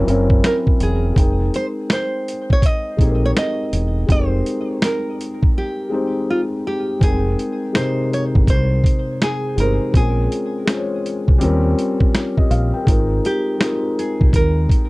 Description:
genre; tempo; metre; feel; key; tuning
lo-fi hip hop; 82 BPM; 4/4; swing 63% on 16ths; F minor; A4 = 441 Hz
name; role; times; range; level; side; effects
nylon-string guitar; melody; 0.0-14.9 s; F4 to Eb5; -24 LUFS; right 1 dB; tape echo
felt-muted upright piano; accompaniment; 0.0-14.9 s; C3 to G5; -21 LUFS; left 2 dB; cassette tape
deep dub fingered electric bass; bass; 0.0-14.7 s; Fb1 to Eb2; -18 LUFS; equal; none
dusty soul sampler-style drum kit; drums; 0.1-14.9 s; finger snaps, hi-hat, kick drum, snare drum; -16 LUFS; equal; none
room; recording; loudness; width
light reverb; none; -16 LUFS; side -22 dB against mid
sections
0.0-7.0 A section; 7.0-14.9 B section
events
break 5.6-7.0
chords
0.0 Gb7#11; 1.2 Fm11 (rootless); 9.9 Bbm7; 11.4 Eb13; 12.9 Ab6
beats
0.43 | 1.16 1.89 2.62 3.36 | 4.09 4.82 5.55 6.28 | 7.02 7.75 8.48 9.21 | 9.94 10.67 11.41 12.14 | 12.87 13.60 14.33

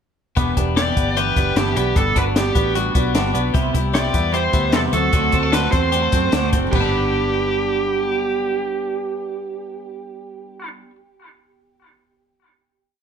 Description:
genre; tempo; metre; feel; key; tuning
jangly indie pop; 151 BPM; 4/4; straight; G major; A4 = 440 Hz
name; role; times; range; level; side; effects
fingerpicked twelve-string acoustic guitar; accompaniment; 0.4-11.0 s; C3 to G4; -25 LUFS; right 5 dB; none
twelve-string electric guitar; arpeggios; 0.4-11.0 s; F#3 to A4; -24 LUFS; left 8 dB; none
vintage muted fingered electric bass; bass; 0.4-10.8 s; E1 to F#2; -24 LUFS; equal; none
compact cocktail drum kit; drums; 0.4-6.8 s; crash cymbal, hi-hat, kick drum, snare drum, toms; -21 LUFS; left 1 dB; none
dark smooth lead guitar; melody; 0.8-10.7 s; G4 to D5; -22 LUFS; right 3 dB; overdrive
room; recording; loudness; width
moderate studio reverb, RT60 0.8 s; none; -16 LUFS; side -7 dB against mid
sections
0.4-6.7 bridge; 6.7-9.9 final chord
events
none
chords
0.4 Em7; 2.0 Gmaj7; 3.5 Cmaj7; 4.9 D7; 6.7 G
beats
| 0.37 0.77 1.17 1.56 | 1.96 2.36 2.75 3.15 | 3.54 3.94 4.34 4.74 | 5.13 5.53 5.93 6.33 | 6.73 7.13 7.53 7.93 | 8.33 8.73 9.13 9.53

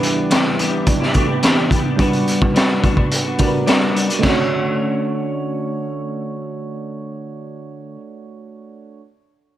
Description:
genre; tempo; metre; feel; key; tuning
indie pop, bedroom pop; 107 BPM; 4/4; straight; D major; A4 = 441 Hz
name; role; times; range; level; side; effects
clean electric guitar; accompaniment; 0.0-8.0 s; D3 to G4; -22 LUFS; left 5 dB; ensemble chorus, warbly pitch drift
soft electric-piano-like synth keys; accompaniment; 0.0-9.0 s; G3 to D5; -23 LUFS; right 4 dB; chorus
raw garage drum kit; drums; 0.0-4.4 s; hi-hat, kick drum, snare drum, splash cymbal; -17 LUFS; equal; none
electric guitar through a small old amp; second line; 0.9-2.0 s; F#3 to G4; -26 LUFS; right 6 dB; ensemble chorus, analog delay
room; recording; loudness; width
light reverb, studio ambience; none; -15 LUFS; side -12 dB against mid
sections
0.0-4.2 A section; 4.2-6.5 B section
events
synth keys fill 3.4-4.2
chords
0.0 Em7; 2.0 Gmaj7; 4.2 Dmaj7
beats
0.31 0.87 1.43 | 1.99 2.55 3.11 3.67 | 4.23 4.79 5.36 5.92

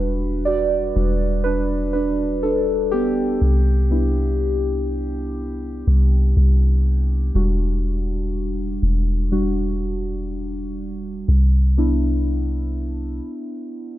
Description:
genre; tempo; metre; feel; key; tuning
contemporary R&B; 61 BPM; 4/4; straight; E minor; A4 = 441 Hz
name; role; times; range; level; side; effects
muted felt-like synth keys; accompaniment; 0.0-14.0 s; G3 to D5; -23 LUFS; equal; chorus, phaser
soft 808-style bass; bass; 0.0-13.2 s; E1 to C2; -20 LUFS; equal; none
room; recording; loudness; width
light reverb; none; -18 LUFS; side -14 dB against mid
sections
0.0-14.0 A section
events
synth keys solo 0.0-14.0; stop 13.2-14.0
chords
0.0 Em9; 3.4 Cmaj9; 7.3 Em9; 11.3 Cmaj9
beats
0.46 1.44 2.43 | 3.41 4.39 5.38 6.36 | 7.35 8.33 9.31 10.30 | 11.28 12.26 13.25

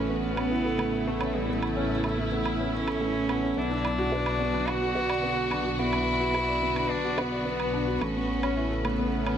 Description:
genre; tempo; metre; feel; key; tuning
piano and strings electronica; 108 BPM; 4/4; straight; B minor; A4 = 440 Hz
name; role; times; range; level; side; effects
rich cello; melody; 0.0-9.4 s; G3 to F#4; -30 LUFS; equal; none
warm studio string section; sustained chords; 0.0-9.4 s; C#3 to B4; -33 LUFS; equal; none
felt-muted upright piano; riff; 0.0-9.4 s; A3 to D5; -30 LUFS; right 1 dB; digital delay
dark detuned saw bass; bass; 0.0-9.4 s; A1 to B1; -34 LUFS; left 1 dB; none
woodblock; drums; 0.4-9.4 s; none; -36 LUFS; right 5 dB; none
room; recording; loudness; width
light reverb, studio reverb; none; -25 LUFS; side -9 dB against mid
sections
0.0-9.4 A section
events
none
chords
0.0 Aadd9; 3.6 Bm; 8.0 Aadd9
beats
0.23 0.79 | 1.34 1.90 2.46 3.01 | 3.57 4.12 4.68 5.23 | 5.79 6.34 6.90 7.46 | 8.01 8.57 9.12

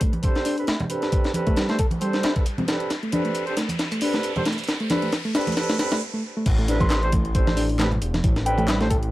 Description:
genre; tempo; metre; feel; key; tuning
breakbeat, breaks; 135 BPM; 4/4; swing 56% on 16ths; A minor; A4 = 440 Hz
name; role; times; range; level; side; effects
reed electric piano; riff; 0.0-9.0 s; G3 to A4; -27 LUFS; left 1 dB; overdrive, tube saturation, low-pass filter, analog delay
breakbeat sampler-style drum kit; drums; 0.0-9.0 s; crash cymbal, hi-hat, kick drum, snare drum; -23 LUFS; equal; none
house drum kit; drums; 0.0-9.1 s; handclaps, hi-hat; -36 LUFS; left 1 dB; none
riser; sound effects; 1.9-6.0 s; none; -35 LUFS; right 1 dB; none
congas; percussion; 0.1-8.7 s; none; -30 LUFS; right 1 dB; none
dark brass ensemble; stabs; 0.2-8.9 s; C4 to C5; -28 LUFS; right 2 dB; analog delay
dark detuned saw bass; bass; 6.5-9.1 s; E1 to A1; -24 LUFS; equal; tube saturation
soft synth bell; melody; 6.8-8.6 s; G5 to C6; -29 LUFS; left 1 dB; chorus, telephone sound, analog delay
room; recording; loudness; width
light reverb; dry, gritty hardware recording, vinyl crackle; -20 LUFS; side -16 dB against mid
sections
0.0-6.5 A section; 6.5-9.1 B section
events
build-up 0.0-6.5; riser 1.9-6.0; drum fill 2.9-6.0; break 6.0-6.5; drop 6.5-9.1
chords
0.0 Am11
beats
0.24 0.68 | 1.13 1.57 2.02 2.46 | 2.90 3.35 3.79 4.24 | 4.68 5.13 5.57 6.02 | 6.46 6.91 7.35 7.79 | 8.24 8.68

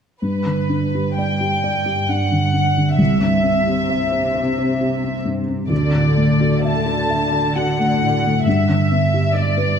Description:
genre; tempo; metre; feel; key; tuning
cinematic, emotional film score for orchestra; 66 BPM; 3/4; rubato; G major; A4 = 442 Hz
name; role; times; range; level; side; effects
warm studio violin section; melody; 0.2-9.8 s; B4 to A5; -21 LUFS; equal; none
felt-muted upright piano; accompaniment; 0.2-9.8 s; C2 to E5; -18 LUFS; equal; none
dark chamber cello section; bass; 0.2-9.8 s; G2 to D3; -23 LUFS; right 1 dB; none
room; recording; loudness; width
wet concert hall reverb, RT60 1.9 s; dark, warm production; -16 LUFS; side -7 dB against mid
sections
0.2-9.8 A section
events
none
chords
0.2 G; 3.0 C; 5.7 Dadd9; 8.5 G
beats
| 0.23 1.17 2.09 | 3.00 3.89 4.80 | 5.71 6.64 7.55 | 8.46 9.36

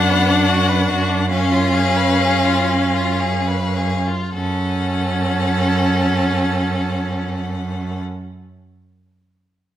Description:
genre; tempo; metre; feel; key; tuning
classical, slow romantic movement for string quartet; 49-78 BPM; 3/4; rubato; F# minor; A4 = 438 Hz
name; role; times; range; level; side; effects
rich violin; melody; 0.0-8.0 s; E#5 to F#5; -24 LUFS; left 8 dB; none
rich violin; second line; 0.0-8.0 s; B3 to B4; -24 LUFS; left 3 dB; none
warm viola; accompaniment; 0.0-8.0 s; C#4 to D4; -21 LUFS; right 1 dB; none
rich cello; bass; 0.0-8.0 s; F#2; -20 LUFS; right 2 dB; none
room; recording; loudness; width
wet recital hall reverb, RT60 1.3 s; recorded in a church or concert hall; -16 LUFS; side -11 dB against mid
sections
0.0-4.3 A section; 4.3-7.6 B section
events
slowing down 0.0-4.3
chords
0.0 Bm/F#; 1.3 C#/F#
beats
0.49 | 1.30 2.20 3.20 | 4.34 5.42 6.52

